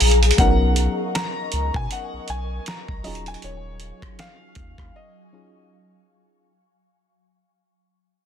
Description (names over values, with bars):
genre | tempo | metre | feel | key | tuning
contemporary R&B | 79 BPM | 4/4 | swing 58% on 16ths | Eb minor | A4 = 440 Hz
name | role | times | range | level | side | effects
FM electric piano with auto-pan | accompaniment | 0.0-6.5 s | Gb3 to A#4 | -28 LUFS | right 1 dB | none
ethereal airy pad | sustained chords | 0.0-6.4 s | Gb3 to C#6 | -26 LUFS | left 3 dB | ensemble chorus, built-in reverb
warm sub bass | bass | 0.0-4.9 s | Eb1 to B2 | -22 LUFS | equal | none
dusty soul sampler-style drum kit | drums | 0.0-4.9 s | hi-hat, kick drum, rim click, snare drum | -23 LUFS | right 1 dB | none
soft round pluck | texture | 0.0-4.5 s | Eb5 | -48 LUFS | right 1 dB | none
clear baby grand piano | melody | 0.4-6.0 s | Db5 to A#5 | -29 LUFS | left 4 dB | ping-pong delay
room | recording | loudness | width
little or no reverb | dense, heavily limited modern master | -19 LUFS | side -8 dB against mid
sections
0.0-6.5 A section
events
fade-out 0.0-6.5; break 4.9-6.5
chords
0.4 Bmaj9; 3.0 Ebm11